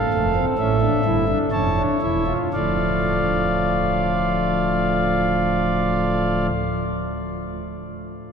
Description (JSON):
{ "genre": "classical, baroque-style 4-part fugue for pipe organ", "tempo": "56-69 BPM", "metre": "4/4", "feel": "straight", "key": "D minor", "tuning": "A4 = 440 Hz", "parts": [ { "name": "pipe organ, principal", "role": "solo", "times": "0.0-6.5 s", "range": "D1 to A5", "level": "-19 LUFS", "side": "equal", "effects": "none" } ], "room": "wet cathedral reverb, RT60 7.0 s", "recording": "minimal, uncompressed stereo recording", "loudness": "-18 LUFS", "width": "side -6 dB against mid", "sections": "0.0-2.5 A section; 2.5-6.7 B section", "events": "slowing down 0.0-2.5", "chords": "0.0 Dm (rootless); 0.6 A7; 2.5 Dm" }